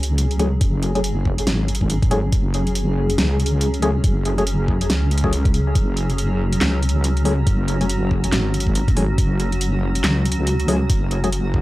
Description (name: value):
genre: deep dubstep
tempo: 140 BPM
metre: 4/4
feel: swing 60% on 16ths, half-time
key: unclear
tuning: A4 = 440 Hz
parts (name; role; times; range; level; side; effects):
- granular cloud pad; sustained chords; 0.0-11.6 s; F#3 to G#4; -26 LUFS; equal; built-in reverb
- wobble bass; bass; 0.0-11.6 s; F#1 to C#2; -20 LUFS; equal; chorus, tube saturation
- dubstep drum kit; drums; 0.0-11.4 s; handclaps, hi-hat, snare drum; -24 LUFS; equal; small room reverb
- percussive organ stab; stabs; 0.4-11.3 s; F#3 to G#4; -24 LUFS; left 2 dB; analog chorus, dub echo
- electronic kick drum; drums; 0.6-11.6 s; none; -19 LUFS; equal; small room reverb
room: little or no reverb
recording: dry, gritty hardware recording, vinyl crackle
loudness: -17 LUFS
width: side -17 dB against mid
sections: 0.0-11.6 A section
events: none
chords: 0.0 F#madd9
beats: 0.18 | 0.61 1.04 1.47 1.90 | 2.33 2.75 3.18 3.61 | 4.04 4.47 4.90 5.33 | 5.75 6.18 6.61 7.04 | 7.47 7.90 8.32 8.75 | 9.18 9.61 10.04 10.47 | 10.90 11.32